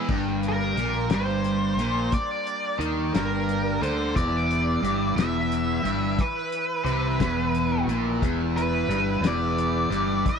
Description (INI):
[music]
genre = psychedelic rock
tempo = 59 BPM (dotted quarters)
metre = 6/8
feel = straight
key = unclear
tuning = A4 = 440 Hz
[part]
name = combo organ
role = sustained chords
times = 0.0-10.4 s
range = E3 to B4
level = -36 LUFS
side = right 13 dB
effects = none
[part]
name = cranked stack guitar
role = riff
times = 0.0-10.2 s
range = E2 to Eb3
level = -25 LUFS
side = equal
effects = overdrive, flanger
[part]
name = mellow fretless electric bass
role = bass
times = 0.1-10.2 s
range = E1 to Eb2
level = -30 LUFS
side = equal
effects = none
[part]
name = cloth-damped thuddy drum kit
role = drums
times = 0.1-10.4 s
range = crash cymbal, hi-hat, kick drum, snare drum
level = -27 LUFS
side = left 3 dB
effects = none
[part]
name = octave-fuzz lead guitar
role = melody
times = 0.5-10.4 s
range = Bb4 to E5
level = -28 LUFS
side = equal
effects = wah, distortion, tape echo
[sound]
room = light reverb, small room ambience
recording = 1960s-style stereo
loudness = -22 LUFS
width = side -6 dB against mid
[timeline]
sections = 0.1-10.4 A section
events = none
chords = 0.1 Gm; 4.2 E5